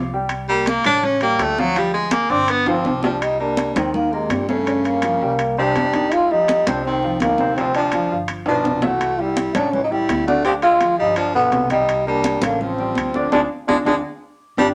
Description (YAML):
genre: Afro-Cuban jazz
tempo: 166 BPM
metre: 4/4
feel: straight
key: C minor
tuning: A4 = 438 Hz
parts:
  - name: warm baby grand piano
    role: accompaniment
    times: 0.0-14.7 s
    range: B2 to D6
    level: -27 LUFS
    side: equal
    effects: none
  - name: upright bass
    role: bass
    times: 0.0-14.7 s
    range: G1 to G2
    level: -34 LUFS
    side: equal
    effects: none
  - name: congas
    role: percussion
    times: 0.3-14.7 s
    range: none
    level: -28 LUFS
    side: equal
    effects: none
  - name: timbales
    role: percussion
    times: 0.3-14.7 s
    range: none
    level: -30 LUFS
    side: equal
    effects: none
  - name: bright baritone saxophone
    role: second line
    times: 0.5-14.7 s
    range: Bb2 to D4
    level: -25 LUFS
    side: equal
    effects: none
  - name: growling trombone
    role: melody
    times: 2.7-14.7 s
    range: G3 to G4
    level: -22 LUFS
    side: equal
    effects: none
room: moderate studio reverb, RT60 0.8 s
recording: none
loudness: -19 LUFS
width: mono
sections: 0.0-3.2 A section; 3.2-14.7 B section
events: baritone saxophone solo 0.0-3.2; drum fill 2.7-3.2, 8.5-9.0, 14.2-14.7; band accent 13.3-14.7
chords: 0.3 C5; 1.0 Aaug7; 1.8 Ddim; 2.5 G5; 3.2 Cm7; 4.7 Gm7b5; 5.4 C5; 6.1 Fsus2; 7.6 Dm7; 8.3 G7; 9.0 C6; 9.7 A7; 10.5 Ddim; 11.2 G7; 11.9 C5; 12.6 A7alt; 13.3 Ddim; 14.0 G5